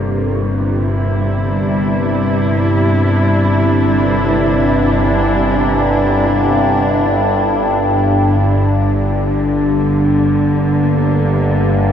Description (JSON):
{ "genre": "dark ambient drone", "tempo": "free time", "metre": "none", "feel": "none", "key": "unclear", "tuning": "A4 = 439 Hz", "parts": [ { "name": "muted symphonic cello section", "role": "sustained chords", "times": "0.0-11.9 s", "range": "G2 to E4", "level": "-15 LUFS", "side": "right 1 dB", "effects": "none" }, { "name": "dark detuned synth bell", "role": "arpeggios", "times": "0.0-3.9 s", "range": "E4 to Bb4", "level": "-36 LUFS", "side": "left 1 dB", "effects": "none" }, { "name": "overtone-sweeping drone", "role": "drone", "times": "0.0-11.9 s", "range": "G1 to G2", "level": "-15 LUFS", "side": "left 1 dB", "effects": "chorus, built-in reverb" } ], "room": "wet huge ambient reverb, RT60 8.2 s", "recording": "nothing above 10.6 kHz", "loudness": "-12 LUFS", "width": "side -8 dB against mid", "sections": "0.0-11.9 A section", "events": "none", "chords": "0.0 Cadd9; 7.1 Gm" }